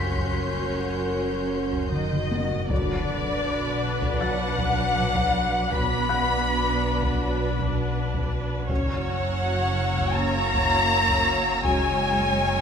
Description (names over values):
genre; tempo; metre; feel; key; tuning
cinematic, suspense film score; 80 BPM; 4/4; straight; unclear; A4 = 437 Hz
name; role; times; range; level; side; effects
warm studio violin section; melody; 0.0-12.6 s; A#4 to B5; -27 LUFS; left 3 dB; none
rich symphonic violin section; second line; 0.0-12.6 s; C#5 to B5; -30 LUFS; left 2 dB; none
rich symphonic viola section; accompaniment; 0.0-12.6 s; F#3 to C#5; -31 LUFS; right 1 dB; none
glass harmonica; sustained chords; 0.0-12.6 s; F#4 to F#5; -35 LUFS; left 2 dB; none
mellow French horn section; sustained chords; 0.0-11.9 s; F#3 to A#4; -34 LUFS; left 2 dB; none
rich symphonic cello section; bass; 0.0-12.6 s; D3 to C#4; -32 LUFS; right 4 dB; none
warm symphonic double bass section; bass; 0.0-12.6 s; F#1 to B1; -30 LUFS; right 1 dB; none
deep rumbling drone; drone; 0.0-12.6 s; F#1 to B1; -33 LUFS; equal; built-in reverb
felt-muted upright piano; texture; 0.0-8.7 s; F#5 to B6; -37 LUFS; left 3 dB; none
warm symphonic violin section; texture; 0.0-12.6 s; A#5 to G6; -36 LUFS; left 4 dB; none
solo taiko drums; drums; 0.2-12.3 s; none; -31 LUFS; equal; none
impact; sound effects; 2.7-5.7 s; none; -33 LUFS; equal; none
room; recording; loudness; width
wet scoring stage reverb, RT60 1.6 s; minimal, uncompressed stereo recording; -22 LUFS; side -7 dB against mid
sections
0.0-2.7 A section; 2.7-12.6 B section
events
drum fill 1.9-2.7; impact 2.7-5.7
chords
0.0 F#; 2.7 Bm; 8.7 F#